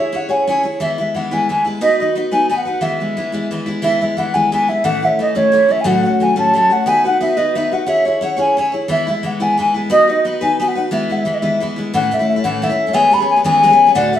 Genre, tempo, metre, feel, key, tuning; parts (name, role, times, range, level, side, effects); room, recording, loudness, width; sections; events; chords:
celtic folk; 119 BPM (dotted quarters); 6/8; straight; E major; A4 = 440 Hz
baroque flute; melody; 0.0-14.2 s; C#5 to B5; -14 LUFS; left 1 dB
picked steel-string acoustic guitar; accompaniment; 0.0-14.2 s; D2 to C#5; -19 LUFS; left 1 dB
moderate studio reverb, RT60 0.8 s; band playing live in one room, studio reverb; -13 LUFS; side -10 dB against mid
0.0-3.8 A section; 3.8-11.9 A section; 11.9-14.2 B section
0.0 C#m; 0.8 E; 1.8 B; 2.8 E; 4.8 A; 5.8 F#m/A; 6.9 B; 7.9 C#m; 8.9 E; 9.9 B; 10.9 E; 11.9 A; 12.9 E6